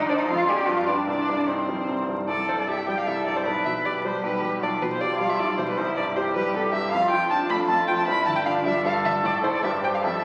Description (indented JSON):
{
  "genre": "quick classical-period movement for piano trio",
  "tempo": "154 BPM",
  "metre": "3/4",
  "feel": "rubato",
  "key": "C major",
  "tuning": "A4 = 441 Hz",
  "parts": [
    { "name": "clear violin", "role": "melody", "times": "0.0-10.2 s", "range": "A4 to B5", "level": "-29 LUFS", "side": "equal", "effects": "none" },
    { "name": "warm cello", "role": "second line", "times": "0.0-10.2 s", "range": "C4 to B4", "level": "-29 LUFS", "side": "equal", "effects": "none" },
    { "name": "clear baby grand piano", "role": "accompaniment", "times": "0.0-10.2 s", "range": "B1 to D5", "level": "-29 LUFS", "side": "equal", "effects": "none" }
  ],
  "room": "wet concert hall reverb, RT60 1.9 s",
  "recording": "very old 78 rpm record, vinyl crackle",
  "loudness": "-24 LUFS",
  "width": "mono",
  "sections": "0.0-2.3 A section; 2.3-10.2 A section",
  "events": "none",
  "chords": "0.3 Fm69; 0.7 G7; 1.1 Cm; 2.3 C5; 3.5 G/B; 5.8 C; 6.9 Dm/F; 8.1 G5; 9.2 Am; 9.6 C5/G"
}